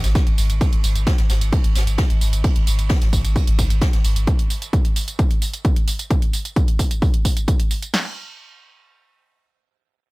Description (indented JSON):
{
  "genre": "driving peak-time techno",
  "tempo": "131 BPM",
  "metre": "4/4",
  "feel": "straight",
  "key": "unclear",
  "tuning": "A4 = 440 Hz",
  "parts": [
    { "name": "saturated sub bass", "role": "bass", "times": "0.0-4.3 s", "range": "G#1", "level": "-20 LUFS", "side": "equal", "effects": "overdrive, sidechain pumping, low-pass filter" },
    { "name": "electronic hi-hat and tambourine", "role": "drums", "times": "0.0-7.9 s", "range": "none", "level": "-29 LUFS", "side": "right 3 dB", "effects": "sidechain pumping on hats, sidechain pumping on perc" },
    { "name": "jazz brush drum kit", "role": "drums", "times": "0.0-4.2 s", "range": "hi-hat, ride cymbal, snare drum", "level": "-32 LUFS", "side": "right 2 dB", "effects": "high-pass filter on cymbals, high-pass filter on hats, high-pass filter on snare, high-pass filter on room" },
    { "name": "techno drum kit", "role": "drums", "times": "0.2-8.0 s", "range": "crash cymbal, kick drum, snare drum", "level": "-18 LUFS", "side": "equal", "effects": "none" }
  ],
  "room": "little or no reverb",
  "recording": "none",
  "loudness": "-16 LUFS",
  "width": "side -23 dB against mid",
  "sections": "0.6-7.9 A section; 7.9-9.8 B section",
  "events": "none",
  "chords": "none"
}